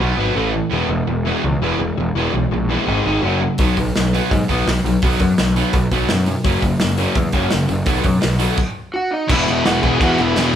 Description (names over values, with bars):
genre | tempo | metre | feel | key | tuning
punk rock | 168 BPM | 4/4 | straight | unclear | A4 = 440 Hz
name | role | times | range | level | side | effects
crunchy overdriven guitar | riff | 0.0-10.6 s | E2 to B3 | -22 LUFS | right 6 dB | none
overdriven semi-hollow guitar | riff | 0.0-10.5 s | A2 to G#4 | -21 LUFS | left 5 dB | none
fuzz picked electric bass | bass | 0.0-10.5 s | E1 to G#2 | -20 LUFS | equal | overdrive
loose indie drum kit | drums | 3.6-10.4 s | crash cymbal, hi-hat, kick drum, snare drum | -20 LUFS | equal | none
lead guitar through a small cranked amp | melody | 8.9-10.6 s | D#4 to G#5 | -20 LUFS | right 1 dB | overdrive
distorted electric guitar | riff | 9.3-10.6 s | E2 to E3 | -20 LUFS | left 2 dB | overdrive
room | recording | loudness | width
light reverb | band playing live in one room | -15 LUFS | side -9 dB against mid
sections
0.0-9.3 A section; 9.3-10.6 B section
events
stop 8.6-9.3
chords
0.0 B5; 0.4 A5; 0.7 E; 2.9 G#5; 3.2 F#5; 3.6 B5; 6.5 F#; 7.9 B7; 9.3 E